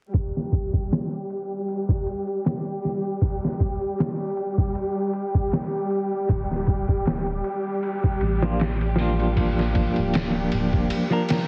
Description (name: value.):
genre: trip hop.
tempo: 78 BPM.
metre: 4/4.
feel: swing 54% on 16ths.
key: unclear.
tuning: A4 = 440 Hz.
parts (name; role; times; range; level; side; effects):
clear studio string section; sustained chords; 0.1-11.5 s; G3 to G4; -30 LUFS; equal; low-pass filter.
trip hop sampler-style drum kit; drums; 0.1-11.5 s; hi-hat, kick drum, ride cymbal, snare drum; -27 LUFS; equal; overdrive, low-pass filter on cymbals, small room ambience, low-pass filter on kick, low-pass filter on snare, low-pass filter on hats.
round analog bass; bass; 6.3-10.9 s; D1 to A1; -29 LUFS; equal; none.
clean electric guitar; accompaniment; 8.4-11.5 s; F3 to Bb4; -26 LUFS; equal; tremolo, tape echo.
room: light reverb.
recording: heavily compressed radio sound, multiband compression, vinyl crackle, low-pass filter.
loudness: -24 LUFS.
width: mono.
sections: 0.1-11.5 A section.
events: filter sweep on string section 0.1-11.5; filter sweep 0.1-11.5; kick drops out 10.9-11.5.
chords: 0.1 N.C.; 6.3 Bb/D.